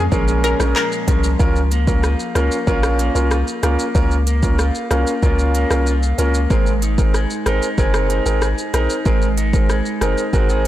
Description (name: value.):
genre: dancehall.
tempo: 94 BPM.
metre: 4/4.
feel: straight.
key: Db major.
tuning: A4 = 445 Hz.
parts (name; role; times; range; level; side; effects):
analog pluck; melody; 0.0-1.2 s; Bb4; -23 LUFS; left 2 dB; chorus, digital delay.
glassy FM pad; sustained chords; 0.0-1.4 s; Db4 to Bb5; -36 LUFS; left 6 dB; none.
electric guitar at the edge of break-up; arpeggios; 0.0-10.7 s; Bb2 to Ab4; -24 LUFS; equal; digital delay.
punchy sub bass; bass; 0.0-10.7 s; Gb1 to Db2; -18 LUFS; equal; none.
warm concert grand piano; accompaniment; 0.1-10.7 s; C4 to Bb4; -21 LUFS; right 1 dB; sidechain pumping.
afro-pop drum kit; drums; 0.1-10.7 s; handclaps, hi-hat, kick drum, rim click, shaker; -20 LUFS; equal; soft clipping on snare.
bongos; percussion; 0.1-1.2 s; none; -34 LUFS; left 7 dB; none.
room: light reverb.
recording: blown-out, overdriven recording, overdrive.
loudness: -15 LUFS.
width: side -13 dB against mid.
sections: 0.0-1.4 A section; 1.4-10.7 B section.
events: none.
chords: 0.0 Bbm7; 6.5 Abadd9.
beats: 0.12 0.76 | 1.40 2.04 2.67 3.31 | 3.95 4.59 5.23 5.87 | 6.50 7.14 7.78 8.42 | 9.06 9.70 10.33.